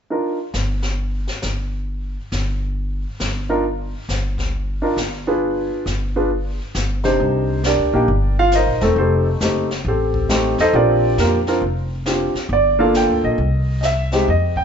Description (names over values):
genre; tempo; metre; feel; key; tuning
jazz piano trio; 136 BPM; 4/4; swing 66% on 8ths; C minor; A4 = 440 Hz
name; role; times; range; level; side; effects
warm grand piano; melody; 0.1-0.4, 3.5-14.6 s; C3 to G5; -17 LUFS; right 1 dB; none
jazz brush drum kit; drums; 0.1-14.6 s; brushed snare drum, hi-hat, kick drum, snare drum; -28 LUFS; left 2 dB; none
upright bass; bass; 0.5-14.6 s; E1 to F2; -22 LUFS; equal; none
room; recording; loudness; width
light reverb; band playing live in one room, nothing above 7.8 kHz; -17 LUFS; side -7 dB against mid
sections
0.1-7.2 A section; 7.2-14.6 B section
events
none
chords
0.1 N.C.; 7.2 Cm9; 9.0 F9; 10.7 Bb69; 12.5 Gm7; 13.4 C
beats
| 0.10 0.54 0.99 1.43 | 1.87 2.32 2.76 3.20 | 3.65 4.09 4.53 4.98 | 5.42 5.86 6.31 6.75 | 7.19 7.64 8.08 8.52 | 8.96 9.41 9.85 10.29 | 10.73 11.18 11.62 12.06 | 12.50 12.95 13.39 13.83 | 14.27